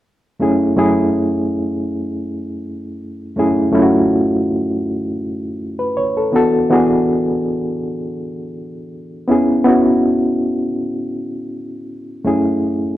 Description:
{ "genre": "soul", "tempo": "81 BPM", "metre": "4/4", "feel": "swing 54% on 16ths", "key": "F# minor", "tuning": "A4 = 440 Hz", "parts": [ { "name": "reed electric piano", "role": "solo", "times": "0.4-13.0 s", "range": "F#2 to C#5", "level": "-15 LUFS", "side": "equal", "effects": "fast tremolo" } ], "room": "wet stone room reverb, RT60 1.0 s", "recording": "band playing live in one room, cassette tape", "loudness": "-15 LUFS", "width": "side -14 dB against mid", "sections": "0.4-12.3 A section", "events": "none", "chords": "0.4 F#m9; 6.3 E9sus4; 9.3 C#m7; 12.3 F#m9", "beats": "| 0.41 1.15 1.89 2.63 | 3.37 4.11 4.85 5.59 | 6.34 7.08 7.82 8.56 | 9.30 10.04 10.78 11.52 | 12.26" }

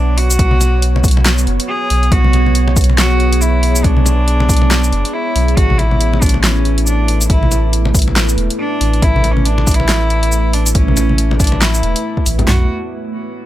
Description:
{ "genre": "deep dubstep", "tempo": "139 BPM", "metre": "4/4", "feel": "swing 59% on 16ths, half-time", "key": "B dorian", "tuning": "A4 = 440 Hz", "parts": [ { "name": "rich cello", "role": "melody", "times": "0.0-12.7 s", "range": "C#4 to G#4", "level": "-20 LUFS", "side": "equal", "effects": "dub echo" }, { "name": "deep dark ambient pad", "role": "sustained chords", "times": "0.0-12.7 s", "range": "A3 to C#5", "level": "-21 LUFS", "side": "right 2 dB", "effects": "chorus, built-in reverb" }, { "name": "soft dub sub bass", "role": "bass", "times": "0.0-12.7 s", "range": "E1 to B1", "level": "-14 LUFS", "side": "equal", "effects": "none" }, { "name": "deep house drum kit", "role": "drums", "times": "0.2-12.5 s", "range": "handclaps, hi-hat, shaker, snare drum", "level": "-18 LUFS", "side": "equal", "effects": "none" }, { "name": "deep house drum kit", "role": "drums", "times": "0.4-12.6 s", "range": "handclaps, kick drum, snare drum, toms", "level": "-14 LUFS", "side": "equal", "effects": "none" }, { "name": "congas", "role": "percussion", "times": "0.5-12.5 s", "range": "none", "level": "-22 LUFS", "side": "left 2 dB", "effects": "none" } ], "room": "little or no reverb", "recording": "none", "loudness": "-11 LUFS", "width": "side -14 dB against mid", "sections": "0.0-12.5 A section", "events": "drop 0.0-12.5", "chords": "0.0 Bm; 5.6 Asus2; 12.5 B5", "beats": "| 0.39 0.82 1.25 1.69 | 2.12 2.55 2.98 3.41 | 3.85 4.28 4.71 5.14 | 5.57 6.00 6.43 6.87 | 7.30 7.73 8.16 8.59 | 9.03 9.46 9.89 10.32 | 10.75 11.18 11.62 12.05 | 12.48" }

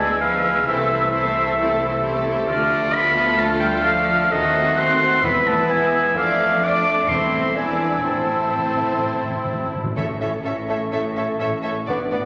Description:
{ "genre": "classical", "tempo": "129 BPM", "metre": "4/4", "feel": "straight", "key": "A minor", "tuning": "A4 = 440 Hz", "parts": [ { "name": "warm symphonic violin section", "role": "melody", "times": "0.0-12.2 s", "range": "G#4 to E5", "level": "-34 LUFS", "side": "equal", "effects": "none" }, { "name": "clear clarinet", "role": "second line", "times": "0.0-12.2 s", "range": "D4 to E5", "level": "-34 LUFS", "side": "equal", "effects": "none" }, { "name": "clear oboe", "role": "second line", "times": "0.0-12.2 s", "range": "C#5 to D6", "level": "-24 LUFS", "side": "equal", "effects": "none" }, { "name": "flute section", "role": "second line", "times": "0.0-12.2 s", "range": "F#5 to F#6", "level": "-29 LUFS", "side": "equal", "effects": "none" }, { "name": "warm symphonic violin section", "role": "second line", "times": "0.0-12.2 s", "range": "C4 to B4", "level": "-35 LUFS", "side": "equal", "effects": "none" }, { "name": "warm bassoon", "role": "accompaniment", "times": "0.0-12.2 s", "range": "G#3 to D4", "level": "-28 LUFS", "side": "equal", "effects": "none" }, { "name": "warm symphonic viola section", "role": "accompaniment", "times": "0.0-12.2 s", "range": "G#3 to D4", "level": "-38 LUFS", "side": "equal", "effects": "none" }, { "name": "concert harp", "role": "arpeggios", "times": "0.0-12.3 s", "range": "A2 to D6", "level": "-35 LUFS", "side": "equal", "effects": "none" }, { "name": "dark symphonic double bass section", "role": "bass", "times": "0.0-12.3 s", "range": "A1 to F2", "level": "-34 LUFS", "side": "equal", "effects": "none" }, { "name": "rich studio cello section", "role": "bass", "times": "0.0-12.3 s", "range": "A2 to D4", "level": "-33 LUFS", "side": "equal", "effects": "none" }, { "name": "warm French horn section", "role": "sustained chords", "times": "0.7-12.3 s", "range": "A3 to F#4", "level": "-34 LUFS", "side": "equal", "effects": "none" }, { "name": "warm trombone section", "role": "sustained chords", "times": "0.7-9.7 s", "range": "C3 to B3", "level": "-36 LUFS", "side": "equal", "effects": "none" }, { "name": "timpani", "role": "percussion", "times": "5.2-12.3 s", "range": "E2 to A2", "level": "-34 LUFS", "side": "equal", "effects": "none" } ], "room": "wet scoring stage reverb, RT60 1.6 s", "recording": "none", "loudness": "-20 LUFS", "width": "mono", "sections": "0.0-10.0 A section; 10.0-12.3 B section", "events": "timpani fill 8.0-10.0", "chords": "0.0 E7/D; 0.7 Am/C; 2.5 Dm; 4.3 D#dim7; 5.2 E; 6.1 Dm/F; 7.1 Am/E; 7.6 E7; 8.0 Am; 10.0 A", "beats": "0.20 | 0.66 1.11 1.57 2.02 | 2.48 2.94 3.39 3.85 | 4.31 4.77 5.22 5.68 | 6.15 6.61 7.08 7.55 | 8.04 8.53 9.01 9.49 | 9.97 10.45 10.93 11.40 | 11.88" }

